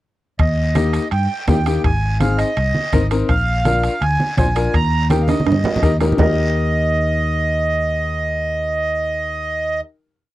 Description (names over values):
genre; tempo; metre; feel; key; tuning
latin, cumbia; 166 BPM; 4/4; straight; Eb major; A4 = 442 Hz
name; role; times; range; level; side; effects
accordion; melody; 0.4-9.8 s; Eb5 to Bb5; -21 LUFS; right 2 dB; none
fingered electric bass; bass; 0.4-9.8 s; Ab1 to G2; -20 LUFS; equal; none
bombo; percussion; 0.4-6.3 s; none; -20 LUFS; equal; none
guiro; percussion; 0.4-6.3 s; none; -36 LUFS; left 4 dB; none
timbales; percussion; 0.4-6.3 s; none; -24 LUFS; right 6 dB; none
clear upright piano; accompaniment; 0.8-9.8 s; Bb3 to C5; -23 LUFS; left 5 dB; none
congas; percussion; 0.8-6.3 s; none; -21 LUFS; right 2 dB; none
room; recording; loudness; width
little or no reverb; dry, close 1970s-style studio recording; -16 LUFS; side -16 dB against mid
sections
0.4-6.2 A section; 6.2-9.1 final chord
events
drum fill 5.3-6.2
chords
0.4 Eb; 1.8 Ab; 3.3 Bb7; 4.7 Eb